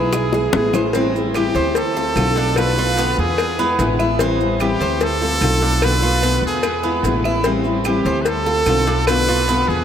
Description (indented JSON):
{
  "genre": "latin, Cuban son and guajira",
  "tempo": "148 BPM",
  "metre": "4/4",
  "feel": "straight",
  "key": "A minor",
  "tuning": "A4 = 445 Hz",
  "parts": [
    { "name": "brilliant trumpet", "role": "melody", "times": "0.0-9.8 s", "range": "G4 to B4", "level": "-21 LUFS", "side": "right 1 dB", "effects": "none" },
    { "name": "nylon-string guitar", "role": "accompaniment", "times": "0.0-9.8 s", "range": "B2 to F4", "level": "-21 LUFS", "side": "left 3 dB", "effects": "none" },
    { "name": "Cuban tres", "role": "arpeggios", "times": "0.0-9.7 s", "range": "B3 to C5", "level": "-22 LUFS", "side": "right 2 dB", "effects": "none" },
    { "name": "upright bass", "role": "bass", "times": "0.0-9.8 s", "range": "A1 to E2", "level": "-22 LUFS", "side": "right 1 dB", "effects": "none" },
    { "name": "bongos and cowbell", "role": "percussion", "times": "0.1-9.7 s", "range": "none", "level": "-26 LUFS", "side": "left 4 dB", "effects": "none" },
    { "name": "claves", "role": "percussion", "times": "0.1-9.3 s", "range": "none", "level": "-36 LUFS", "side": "right 5 dB", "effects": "none" },
    { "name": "maracas", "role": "percussion", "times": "0.1-9.8 s", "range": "none", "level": "-37 LUFS", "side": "right 8 dB", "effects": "none" }
  ],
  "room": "wet huge ambient reverb, RT60 8.0 s",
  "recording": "in a vast, echoing space",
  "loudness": "-15 LUFS",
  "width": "side -8 dB against mid",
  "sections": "0.9-9.8 A section",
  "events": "drum fill 0.3-0.9",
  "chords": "0.0 E; 0.9 Am7; 1.8 Dm7; 2.6 Bm7b5; 3.4 E7; 4.2 Am7; 5.0 Dm7; 5.8 Bm7b5; 6.6 E7; 7.4 Am7; 8.3 Dm7; 9.1 Bm7b5",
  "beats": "0.13 0.54 | 0.95 1.35 1.76 2.17 | 2.57 2.98 3.38 3.79 | 4.20 4.60 5.01 5.42 | 5.82 6.23 6.63 7.04 | 7.45 7.85 8.26 8.67 | 9.07 9.48"
}